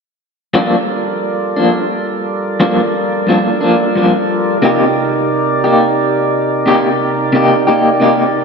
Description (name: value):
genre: blues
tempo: 59 BPM (dotted quarters)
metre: 12/8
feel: straight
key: G minor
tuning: A4 = 440 Hz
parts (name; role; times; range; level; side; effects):
- electric guitar through a small old amp; accompaniment; 0.5-8.2 s; G2 to G4; -13 LUFS; left 1 dB; tremolo
- tonewheel organ; sustained chords; 0.5-8.4 s; C3 to D5; -15 LUFS; right 2 dB; slow rotary speaker
room: wet lush hall reverb, RT60 2.7 s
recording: dreamy mix soaked in reverb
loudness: -11 LUFS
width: side -5 dB against mid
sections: 0.5-8.4 A section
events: none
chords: 0.5 Gm7; 4.6 Cm7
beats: | 0.54 1.56 2.58 3.60 | 4.62 5.64 6.66 7.68